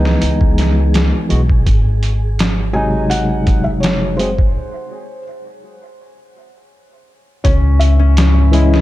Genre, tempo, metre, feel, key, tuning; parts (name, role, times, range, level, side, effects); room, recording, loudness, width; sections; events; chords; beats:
trip hop; 83 BPM; 4/4; swing 53% on 16ths; C# minor; A4 = 440 Hz
felt-muted upright piano; melody; 0.0-8.8 s; B#4 to G#5; -24 LUFS; equal; dub echo
barky tine electric piano; accompaniment; 0.0-8.8 s; B#2 to G#4; -18 LUFS; left 1 dB; harmonic tremolo, tape echo
upright bass; bass; 0.0-8.8 s; F#1 to C#2; -14 LUFS; equal; tube saturation
wind-like tuned noise texture; texture; 0.0-8.8 s; G#4 to B4; -32 LUFS; right 1 dB; built-in reverb
trip hop sampler-style drum kit; drums; 0.1-8.8 s; hi-hat, kick drum, snare drum; -16 LUFS; equal
concert harp; arpeggios; 7.4-8.8 s; G#3 to C#4; -20 LUFS; left 9 dB; dub echo
deep dark ambient pad; sustained chords; 7.9-8.8 s; G#3 to C#5; -24 LUFS; left 2 dB
digital ambience; dark, warm production; -12 LUFS; side -16 dB against mid
0.0-7.4 A section; 7.4-8.8 B section
break 4.5-7.4
0.0 C#m7; 1.7 G#7; 7.4 C#m
0.21 0.94 | 1.66 2.38 3.10 3.83 | 4.55 5.27 6.00 6.72 | 7.44 8.16